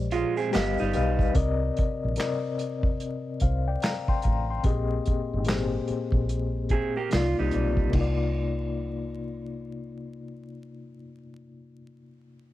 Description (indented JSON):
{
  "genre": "R&B, neo-soul",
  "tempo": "73 BPM",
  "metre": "4/4",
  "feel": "swing 62% on 16ths",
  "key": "C minor",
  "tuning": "A4 = 440 Hz",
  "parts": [
    { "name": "reed electric piano", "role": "accompaniment", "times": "0.0-12.5 s", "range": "Bb2 to C6", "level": "-30 LUFS", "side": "left 4 dB", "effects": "tremolo" },
    { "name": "deep dub fingered electric bass", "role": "bass", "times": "0.0-10.9 s", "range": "G1 to C2", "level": "-28 LUFS", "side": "equal", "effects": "none" },
    { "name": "electric guitar through a small old amp", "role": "second line", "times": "0.1-1.3, 6.7-7.9 s", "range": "G3 to Ab4", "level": "-28 LUFS", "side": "right 6 dB", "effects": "none" },
    { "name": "unplugged drum kit", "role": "drums", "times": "0.1-8.2 s", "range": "crash cymbal, handclaps, hi-hat, kick drum, snare drum", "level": "-27 LUFS", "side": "equal", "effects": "cassette tape" },
    { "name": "tube shaker and finger snaps", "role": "percussion", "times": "0.1-1.3 s", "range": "none", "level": "-49 LUFS", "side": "left 3 dB", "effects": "none" }
  ],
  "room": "small room ambience",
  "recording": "home recording on cassette, vinyl crackle",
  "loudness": "-24 LUFS",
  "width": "side -15 dB against mid",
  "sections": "0.0-7.9 A section; 7.9-11.2 B section",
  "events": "none",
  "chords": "0.0 Bb13sus4; 0.5 G7b13; 1.4 Cm9; 4.6 Bb13sus4; 7.1 Cm11"
}